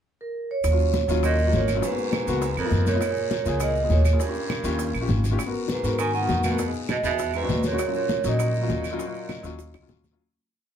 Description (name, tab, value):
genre	Afro-Cuban jazz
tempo	201 BPM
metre	4/4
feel	straight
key	Eb minor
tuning	A4 = 440 Hz
part	vibraphone with medium mallets	melody	0.2-9.9 s	Bb4 to Ab5	-27 LUFS	right 4 dB	none
part	upright bass	bass	0.6-10.2 s	Ab1 to Ab2	-24 LUFS	equal	none
part	bongos	percussion	0.6-10.1 s	none	-36 LUFS	left 6 dB	none
part	claves	percussion	0.6-9.9 s	none	-39 LUFS	right 6 dB	none
part	congas	percussion	0.6-10.2 s	none	-31 LUFS	left 1 dB	none
part	guiro	percussion	0.6-10.2 s	none	-40 LUFS	left 6 dB	none
part	maracas	percussion	0.6-10.2 s	none	-42 LUFS	right 6 dB	none
part	warm baby grand piano	accompaniment	0.7-10.2 s	Gb3 to Bb4	-30 LUFS	left 4 dB	none
part	breathy baritone saxophone	second line	1.2-9.9 s	F2 to Eb3	-31 LUFS	right 4 dB	tape echo
room	wet club reverb, RT60 0.7 s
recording	heard from further back in the room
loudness	-21 LUFS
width	side -9 dB against mid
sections	0.0-0.6 pickup bar; 0.6-10.2 A section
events	fade-out 8.3-10.2; drum fill 9.6-10.2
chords	0.0 N.C.; 0.6 Ebm7; 1.8 Abm7; 2.4 Db7; 3.0 Db69; 4.2 Eb7; 5.4 Abm9; 6.6 Emaj7; 7.2 E9; 7.8 Ebm7